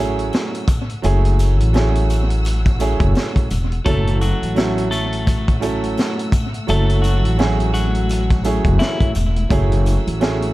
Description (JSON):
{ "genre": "hip hop, boom-bap hip-hop", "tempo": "85 BPM", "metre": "4/4", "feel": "swing 58% on 16ths", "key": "F# minor", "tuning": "A4 = 440 Hz", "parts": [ { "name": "clear upright piano", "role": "accompaniment", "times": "0.0-10.5 s", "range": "F#3 to A4", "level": "-23 LUFS", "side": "right 4 dB", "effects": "high-pass filter, low-pass filter" }, { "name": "dark studio string section", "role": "sustained chords", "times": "0.0-10.5 s", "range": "A3 to E6", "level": "-31 LUFS", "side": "left 2 dB", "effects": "high-pass filter, low-pass filter" }, { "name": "upright bass", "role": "bass", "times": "0.0-10.5 s", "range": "E1 to A1", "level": "-18 LUFS", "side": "equal", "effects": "none" }, { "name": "vintage drum kit", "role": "drums", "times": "0.2-10.5 s", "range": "hi-hat, kick drum, snare drum", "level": "-20 LUFS", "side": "equal", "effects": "none" }, { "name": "sleigh bells", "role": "percussion", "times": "0.3-10.4 s", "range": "none", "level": "-39 LUFS", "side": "left 3 dB", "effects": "tape echo" }, { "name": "clean electric guitar", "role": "melody", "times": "3.9-9.1 s", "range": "E3 to A4", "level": "-24 LUFS", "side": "left 2 dB", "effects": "high-pass filter, low-pass filter, tape echo" } ], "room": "small room reverb", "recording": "echo-heavy mix", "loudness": "-15 LUFS", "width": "side -18 dB against mid", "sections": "0.0-10.5 A section", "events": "none", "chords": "0.0 F#m7" }